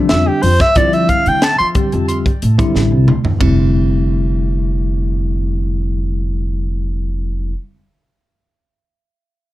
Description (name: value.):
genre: electric jazz fusion.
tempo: 90 BPM.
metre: 4/4.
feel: straight.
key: unclear.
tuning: A4 = 440 Hz.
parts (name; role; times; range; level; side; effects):
bell-like tine electric piano; accompaniment; 0.0-7.5 s; D3 to G4; -20 LUFS; left 1 dB; medium stereo tremolo.
upright bass; bass; 0.0-7.5 s; F1 to F3; -16 LUFS; equal; none.
clear soprano saxophone; melody; 0.1-1.7 s; G4 to C6; -16 LUFS; equal; plate reverb, tape echo.
crisp fusion drum kit; drums; 0.1-3.6 s; hi-hat, kick drum, ride cymbal, snare drum, toms; -17 LUFS; equal; none.
room: light reverb.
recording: none.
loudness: -13 LUFS.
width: side -15 dB against mid.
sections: 0.0-3.4 A section; 3.4-6.1 B section.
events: soprano saxophone solo 0.0-3.4; drum fill 2.7-3.4.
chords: 0.0 Fmaj7sus2; 3.4 Fsus2.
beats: 0.09 | 0.76 1.42 2.08 2.75 | 3.41 4.07 4.74 5.40.